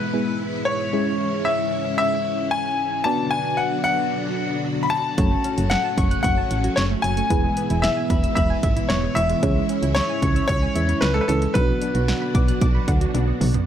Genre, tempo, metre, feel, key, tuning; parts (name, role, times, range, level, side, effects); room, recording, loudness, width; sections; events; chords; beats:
synth-pop; 113 BPM; 4/4; straight; B dorian; A4 = 438 Hz
bright grand piano; melody; 0.0-13.1 s; A4 to B5; -24 LUFS; left 3 dB; analog delay
FM electric piano with auto-pan; accompaniment; 0.0-13.6 s; F#3 to D5; -28 LUFS; right 1 dB; phaser
string machine, full ensemble; sustained chords; 0.0-13.7 s; G#2 to F#4; -28 LUFS; equal; ensemble chorus
soft round pluck; arpeggios; 5.2-13.6 s; E3 to F#6; -30 LUFS; right 1 dB; chorus, analog delay
solid FM bass; bass; 5.2-13.6 s; E1 to E2; -23 LUFS; right 1 dB
punchy analog drum machine; drums; 5.2-13.7 s; hi-hat, kick drum, snare drum, toms; -23 LUFS; right 1 dB
light reverb; -19 LUFS; side -10 dB against mid
0.0-13.7 A section
drum fill 13.1-13.7
0.0 E; 0.9 C#m; 3.1 Bm; 5.2 F#m; 7.3 E; 9.4 C#m; 11.6 Bm
0.40 | 0.93 1.46 1.99 2.52 | 3.06 3.59 4.12 4.65 | 5.18 5.71 6.24 6.77 | 7.30 7.83 8.37 8.90 | 9.43 9.96 10.49 11.02 | 11.55 12.08 12.61 13.14